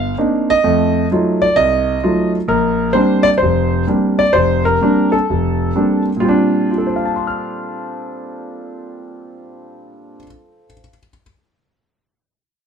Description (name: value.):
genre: solo jazz.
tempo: 129 BPM.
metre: 4/4.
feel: swing 68% on 8ths.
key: Bb major.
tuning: A4 = 437 Hz.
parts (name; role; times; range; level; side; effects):
warm concert grand piano; solo; 0.0-11.2 s; F1 to F6; -14 LUFS; equal; none.
room: light reverb.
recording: none.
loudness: -13 LUFS.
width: side -7 dB against mid.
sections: 0.0-6.2 A section; 6.2-9.9 B section.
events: none.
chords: 0.0 Cm9; 0.6 F7b9; 2.5 Bb69.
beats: 0.16 | 0.62 1.09 1.55 2.02 | 2.48 2.95 3.41 3.88 | 4.34 4.81 5.28 5.74 | 6.21 6.68 7.14 7.61 | 8.08 8.55 9.01 9.48.